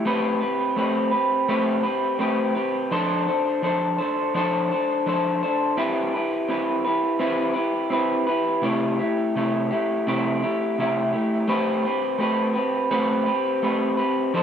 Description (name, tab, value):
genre	indie pop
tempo	84 BPM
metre	4/4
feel	straight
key	C major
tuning	A4 = 440 Hz
part	electric guitar through a small old amp	solo	0.0-14.4 s	C3 to C5	-21 LUFS	equal	lush chorus, warbly pitch drift, digital delay
room	moderate spring reverb, RT60 1.1 s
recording	none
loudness	-21 LUFS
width	side -8 dB against mid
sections	0.0-8.6 A section; 8.6-14.4 B section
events	none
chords	0.1 Am9; 2.9 F6; 5.8 Cmaj7; 8.6 C6; 11.5 Am9